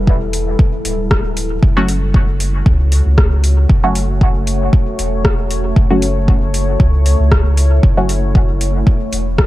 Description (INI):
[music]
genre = dub techno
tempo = 116 BPM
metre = 4/4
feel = swing 55% on 16ths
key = unclear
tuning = A4 = 440 Hz
[part]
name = deep dark ambient pad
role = sustained chords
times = 0.0-9.5 s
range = G3 to C#5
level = -22 LUFS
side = left 1 dB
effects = chorus, built-in reverb, sidechain pumping
[part]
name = warm sub bass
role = bass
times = 0.0-9.5 s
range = D1 to C#2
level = -15 LUFS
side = equal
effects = sidechain pumping
[part]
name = electronic kick drum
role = drums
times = 0.1-9.5 s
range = none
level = -12 LUFS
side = equal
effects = overdrive
[part]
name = deep house drum kit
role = drums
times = 0.3-9.5 s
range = hi-hat, rim click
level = -21 LUFS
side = left 1 dB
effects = overdrive
[part]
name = filtered dub chord stab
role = stabs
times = 1.8-8.1 s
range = F#3 to F#4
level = -21 LUFS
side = equal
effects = chorus, phaser, dub echo
[sound]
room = digital ambience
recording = vinyl crackle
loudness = -11 LUFS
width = side -16 dB against mid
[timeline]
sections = 0.0-9.5 A section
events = none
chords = 0.0 Em; 1.6 F#m